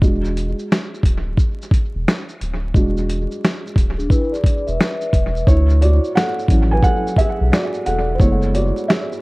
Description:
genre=lo-fi hip hop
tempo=88 BPM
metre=4/4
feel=swing 64% on 16ths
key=unclear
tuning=A4 = 435 Hz
part: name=felt-muted upright piano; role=accompaniment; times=0.0-9.2 s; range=F#3 to G#5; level=-21 LUFS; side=right 1 dB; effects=cassette tape, low-pass filter, analog delay
part: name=saturated sub bass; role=bass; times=0.0-8.7 s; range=D1 to D2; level=-18 LUFS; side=equal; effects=none
part: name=dusty soul sampler-style drum kit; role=drums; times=0.0-9.2 s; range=hi-hat, kick drum, shaker, snare drum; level=-17 LUFS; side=equal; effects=none
part: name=vibraphone with soft mallets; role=second line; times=4.0-5.4 s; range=D4 to E5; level=-24 LUFS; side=left 1 dB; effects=low-pass filter, analog delay
room=little or no reverb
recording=echo-heavy mix, vinyl crackle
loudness=-15 LUFS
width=side -23 dB against mid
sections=0.0-9.2 A section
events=felt piano solo 0.0-9.2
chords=0.0 E7; 5.5 Dmaj9; 8.2 F#m11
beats=| 0.02 0.70 1.38 2.06 | 2.74 3.42 4.11 4.79 | 5.47 6.15 6.83 7.52 | 8.20 8.88

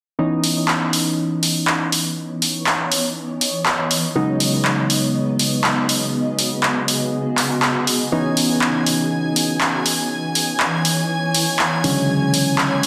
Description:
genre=deep house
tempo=121 BPM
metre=4/4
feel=swing 57% on 16ths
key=C# minor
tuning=A4 = 440 Hz
part: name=warm analog keys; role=stabs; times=0.2-12.9 s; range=C#3 to D#4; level=-24 LUFS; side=equal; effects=chorus, delay
part: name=granular cloud pad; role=texture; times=2.1-12.9 s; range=C#3 to D#5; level=-27 LUFS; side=equal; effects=built-in reverb
part: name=house drum kit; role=drums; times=0.4-12.9 s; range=handclaps, hi-hat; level=-21 LUFS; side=equal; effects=overdrive
part: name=rich chamber violin section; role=texture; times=8.1-12.9 s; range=G#5 to G#6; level=-29 LUFS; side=equal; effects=none
room=moderate plate reverb, RT60 1.8 s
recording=dense, heavily limited modern master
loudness=-19 LUFS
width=mono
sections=0.2-12.9 A section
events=none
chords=0.2 C#m9; 4.2 G#m7/C#; 8.1 C#m9; 11.8 Dmaj9#11/C#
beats=| 0.19 0.69 1.18 1.68 | 2.17 2.67 3.16 3.66 | 4.16 4.65 5.15 5.64 | 6.14 6.63 7.13 7.63 | 8.12 8.62 9.11 9.61 | 10.11 10.60 11.10 11.59 | 12.09 12.59

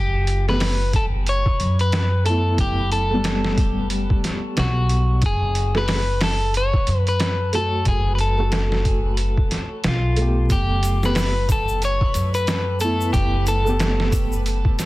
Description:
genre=trip hop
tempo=91 BPM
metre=4/4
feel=swing 59% on 16ths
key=unclear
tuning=A4 = 440 Hz
part: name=electric guitar at the edge of break-up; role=melody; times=0.0-14.4 s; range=E#4 to C#5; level=-24 LUFS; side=left 2 dB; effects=tape echo
part: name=upright bass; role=bass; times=0.0-14.6 s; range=F#1 to F#2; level=-21 LUFS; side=equal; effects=none
part: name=trip hop sampler-style drum kit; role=drums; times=0.3-14.9 s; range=hi-hat, kick drum, snare drum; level=-23 LUFS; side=equal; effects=small room ambience
part: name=felt-muted upright piano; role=accompaniment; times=0.5-14.9 s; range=G3 to A4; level=-26 LUFS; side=equal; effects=tremolo, tape echo
part: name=egg shaker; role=percussion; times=10.5-14.9 s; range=none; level=-38 LUFS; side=left 2 dB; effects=none
part: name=backwards swelling texture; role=texture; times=11.3-14.9 s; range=A3 to B4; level=-36 LUFS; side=right 2 dB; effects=built-in reverb
room=studio ambience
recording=dense, heavily limited modern master, vinyl crackle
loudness=-18 LUFS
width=side -18 dB against mid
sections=0.0-14.9 A section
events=none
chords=0.0 Gadd9/F#; 5.2 F#m; 10.5 Gadd9/F#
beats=0.61 1.27 1.93 | 2.59 3.25 3.91 4.57 | 5.22 5.88 6.54 7.20 | 7.86 8.52 9.18 9.84 | 10.50 11.16 11.82 12.48 | 13.14 13.80 14.46

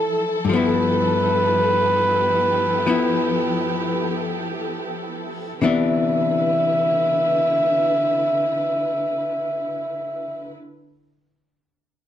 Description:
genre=jazz ballad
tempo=40-55 BPM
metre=4/4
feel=swing 67% on 8ths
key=C major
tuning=A4 = 441 Hz
part: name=trumpet with bucket mute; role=melody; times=0.0-10.5 s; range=A4 to E5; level=-20 LUFS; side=right 1 dB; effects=none
part: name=archtop guitar, miked and amplified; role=accompaniment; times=0.0-10.6 s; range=G2 to A4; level=-23 LUFS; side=left 5 dB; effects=none
part: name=warm symphonic string section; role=sustained chords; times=0.0-10.5 s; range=D3 to B4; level=-26 LUFS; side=equal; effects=none
room=moderate large studio reverb, RT60 0.9 s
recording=close, detailed microphones, lossy compression artefacts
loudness=-18 LUFS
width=side -10 dB against mid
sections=0.0-5.6 A section; 5.6-11.7 B section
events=slowing down 0.0-5.6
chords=0.5 G13; 5.6 Cmaj9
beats=| 0.49 1.64 2.86 4.18 | 5.62 7.13 8.64 10.14

